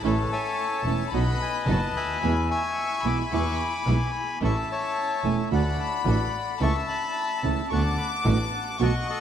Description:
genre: tango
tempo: 110 BPM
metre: 4/4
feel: rubato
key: A major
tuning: A4 = 439 Hz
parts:
  - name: warm studio violin section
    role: second line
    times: 0.0-9.2 s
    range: G#5 to D6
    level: -32 LUFS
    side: left 5 dB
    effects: none
  - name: nylon-string guitar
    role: accompaniment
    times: 0.0-8.9 s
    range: B2 to F#4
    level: -30 LUFS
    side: right 7 dB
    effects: lush chorus
  - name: rich studio string section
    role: stabs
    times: 0.0-9.0 s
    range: B3 to A4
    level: -39 LUFS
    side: right 2 dB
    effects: none
  - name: clear double bass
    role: bass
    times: 0.0-9.0 s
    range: E1 to E2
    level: -26 LUFS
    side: equal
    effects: none
  - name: bandoneon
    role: melody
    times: 0.1-9.2 s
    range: A4 to D6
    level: -28 LUFS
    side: left 3 dB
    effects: none
room: moderate huge ambient reverb, RT60 4.5 s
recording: dreamy mix soaked in reverb, vinyl crackle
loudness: -23 LUFS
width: side -9 dB against mid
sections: 0.0-9.2 A section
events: none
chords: 0.0 A; 1.1 B; 2.2 E; 4.4 A; 5.5 D; 6.6 A/C#; 7.7 D6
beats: | 0.03 0.57 1.12 1.67 | 2.22 2.77 3.31 3.87 | 4.41 4.96 5.51 6.06 | 6.61 7.16 7.70 8.25 | 8.80

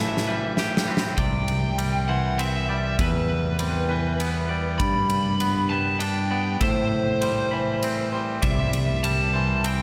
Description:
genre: post-rock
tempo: 99 BPM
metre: 3/4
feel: straight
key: unclear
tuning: A4 = 440 Hz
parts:
  - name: fuzz lead guitar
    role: melody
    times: 0.0-9.8 s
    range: B4 to B5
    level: -30 LUFS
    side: equal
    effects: distortion, slapback echo
  - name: twangy electric guitar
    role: arpeggios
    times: 0.0-9.8 s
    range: E2 to G4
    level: -32 LUFS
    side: equal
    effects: slapback echo
  - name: twangy electric guitar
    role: arpeggios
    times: 0.0-9.8 s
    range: C4 to B5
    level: -37 LUFS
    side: equal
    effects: slapback echo
  - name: fingered electric bass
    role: bass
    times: 0.0-9.8 s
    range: C2 to A2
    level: -28 LUFS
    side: equal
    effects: none
  - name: huge arena drum kit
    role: drums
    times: 0.2-9.8 s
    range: kick drum, ride cymbal, snare drum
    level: -31 LUFS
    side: equal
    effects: none
  - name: pedal steel guitar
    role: sustained chords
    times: 8.4-9.8 s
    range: G3 to C5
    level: -36 LUFS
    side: equal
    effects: none
room: moderate lush hall reverb, RT60 2.6 s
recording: big arena sound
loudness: -24 LUFS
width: mono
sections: 0.0-1.2 A section; 1.2-9.8 B section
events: drum fill 0.0-1.2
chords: 0.0 Am7; 1.2 C; 3.0 Em; 4.8 G; 6.6 Am7; 8.4 C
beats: 0.58 | 1.18 1.79 2.39 | 3.00 3.60 4.20 | 4.81 5.41 6.02 | 6.62 7.23 7.83 | 8.44 9.04 9.65

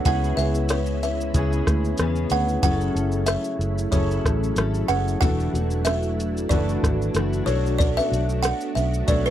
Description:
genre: indie pop, bedroom pop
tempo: 93 BPM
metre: 4/4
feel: swing 55% on 16ths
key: F# minor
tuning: A4 = 440 Hz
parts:
  - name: buzzing kalimba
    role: melody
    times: 0.0-9.3 s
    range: B4 to F#5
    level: -27 LUFS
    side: right 1 dB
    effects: lush chorus, slapback echo
  - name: fingerpicked steel-string acoustic guitar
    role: accompaniment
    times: 0.0-9.3 s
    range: B2 to A4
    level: -29 LUFS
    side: left 7 dB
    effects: ensemble chorus, vibrato effect
  - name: overdriven tine electric piano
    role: accompaniment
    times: 0.0-9.3 s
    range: D4 to C#5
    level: -30 LUFS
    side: right 7 dB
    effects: cassette tape
  - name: soft string machine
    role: sustained chords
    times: 0.0-9.3 s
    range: C#3 to F#4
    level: -32 LUFS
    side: equal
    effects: ensemble chorus
  - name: vintage muted fingered electric bass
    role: bass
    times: 0.1-9.3 s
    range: E1 to E2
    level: -24 LUFS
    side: equal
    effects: none
  - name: soft vintage rhythm box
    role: drums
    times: 0.1-9.3 s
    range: hi-hat, kick drum, rim click, shaker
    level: -24 LUFS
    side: equal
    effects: none
room: little or no reverb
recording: dry, close 1970s-style studio recording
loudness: -20 LUFS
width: side -11 dB against mid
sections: 0.0-9.3 A section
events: none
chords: 0.1 C#m7; 2.6 F#m7; 5.2 E9sus4; 7.5 Bm7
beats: | 0.06 0.70 1.34 1.99 | 2.63 3.28 3.92 4.57 | 5.21 5.86 6.50 7.14 | 7.79 8.43 9.08

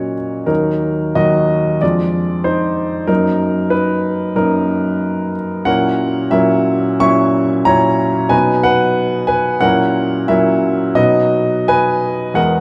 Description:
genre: classical, romantic character piece for solo piano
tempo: 92 BPM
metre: 4/4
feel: uneven beats, rubato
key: B major from 5.7 s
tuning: A4 = 441 Hz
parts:
  - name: warm upright piano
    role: solo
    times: 0.0-12.6 s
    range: D#2 to C#6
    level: -15 LUFS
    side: equal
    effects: none
room: wet concert hall reverb, RT60 1.9 s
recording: none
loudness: -15 LUFS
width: mono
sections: 0.0-12.6 A section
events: none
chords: 0.5 D#m; 1.8 Ddim/F; 3.1 D#m/F#; 5.7 F#7/A#; 8.3 B; 9.6 F#7/A#; 11.0 B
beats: | 0.49 1.18 1.82 2.46 | 3.09 3.73 4.38 5.03 | 5.67 6.33 7.04 7.68 | 8.33 8.99 9.64 10.30 | 10.97 11.70 12.37

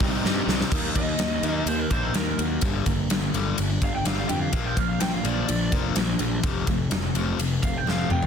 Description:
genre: quiet-loud alternative rock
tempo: 126 BPM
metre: 4/4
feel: straight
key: unclear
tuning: A4 = 440 Hz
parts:
  - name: lead guitar through a small cranked amp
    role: melody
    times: 0.0-8.2 s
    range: C4 to G5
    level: -31 LUFS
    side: right 2 dB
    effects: overdrive
  - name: ensemble organ-string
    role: sustained chords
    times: 0.0-0.7 s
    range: Eb4 to G5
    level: -41 LUFS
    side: right 1 dB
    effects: none
  - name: fuzz guitar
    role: riff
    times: 0.0-8.3 s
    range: F2 to Eb4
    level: -28 LUFS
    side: left 8 dB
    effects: distortion
  - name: sludgy distorted guitar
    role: riff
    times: 0.0-0.7 s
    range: C3 to Eb4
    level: -30 LUFS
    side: right 13 dB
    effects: overdrive
  - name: fuzz picked electric bass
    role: bass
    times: 0.0-8.3 s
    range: F1 to G2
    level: -29 LUFS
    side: equal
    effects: overdrive
  - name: big rock drum kit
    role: drums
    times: 0.0-8.3 s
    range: crash cymbal, kick drum, ride cymbal, snare drum, toms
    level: -26 LUFS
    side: equal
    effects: none
  - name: picked steel-string acoustic guitar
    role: arpeggios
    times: 0.7-8.3 s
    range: F2 to G4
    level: -33 LUFS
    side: right 13 dB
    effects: digital delay
room: light reverb, studio reverb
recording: dense, heavily limited modern master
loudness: -22 LUFS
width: side -7 dB against mid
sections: 0.7-8.3 A section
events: drum fill 0.3-0.7, 7.9-8.3; lead electric guitar solo 0.7-8.3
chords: 0.0 Cm; 0.7 Ebm; 2.6 Gm; 4.5 Bb; 6.4 F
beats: 0.25 | 0.72 1.20 1.68 2.15 | 2.63 3.10 3.58 4.05 | 4.53 5.01 5.48 5.96 | 6.44 6.91 7.39 7.87

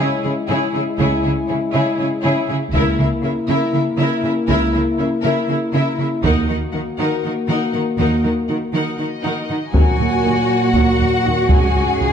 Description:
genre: cinematic, epic orchestral film score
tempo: 240 BPM (eighths)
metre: 7/8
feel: straight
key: unclear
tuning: A4 = 440 Hz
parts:
  - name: rich chamber violin section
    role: melody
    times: 0.0-12.1 s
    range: C#5 to G#5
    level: -27 LUFS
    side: left 5 dB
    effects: none
  - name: rich symphonic violin section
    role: second line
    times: 0.0-12.1 s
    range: F#4 to F#5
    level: -26 LUFS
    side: left 3 dB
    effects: none
  - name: rich symphonic viola section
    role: accompaniment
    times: 0.0-12.1 s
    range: C#3 to F#4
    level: -24 LUFS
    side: right 1 dB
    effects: none
  - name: mellow French horn section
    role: sustained chords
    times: 0.0-12.1 s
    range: G#3 to F#4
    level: -22 LUFS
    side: left 3 dB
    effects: none
  - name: rich symphonic cello section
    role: bass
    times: 0.0-12.1 s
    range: C#3 to G#4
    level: -22 LUFS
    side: right 1 dB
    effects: none
  - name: rich symphonic double bass section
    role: bass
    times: 1.0-12.1 s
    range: C#2 to D#2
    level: -21 LUFS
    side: right 3 dB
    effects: none
  - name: taiko ensemble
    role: drums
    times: 2.7-12.0 s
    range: none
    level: -18 LUFS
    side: equal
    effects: none
  - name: clear trombone section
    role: sustained chords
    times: 9.7-12.1 s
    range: G#2 to G#3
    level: -23 LUFS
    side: right 5 dB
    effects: none
  - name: rich symphonic string section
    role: sustained chords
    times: 9.7-12.1 s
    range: A#3 to G#5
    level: -25 LUFS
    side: right 1 dB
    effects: none
room: wet recital hall reverb, RT60 1.4 s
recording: dark, warm production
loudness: -15 LUFS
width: side -8 dB against mid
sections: 0.0-9.7 A section; 9.7-12.1 B section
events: build-up 0.0-9.7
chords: 0.0 C#m; 2.7 A#dim/C#; 6.2 D#m; 11.5 C#sus4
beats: 0.23 0.48 0.73 | 0.98 1.24 1.49 1.74 1.99 2.23 2.48 | 2.73 2.98 3.23 3.48 3.73 3.98 4.24 | 4.49 4.74 4.99 5.24 5.49 5.74 5.99 | 6.24 6.49 6.74 6.99 7.24 7.49 7.74 | 7.99 8.23 8.48 8.73 8.98 9.23 9.48 | 9.73 9.98 10.23 10.48 10.73 10.98 11.23 | 11.48 11.73 11.98

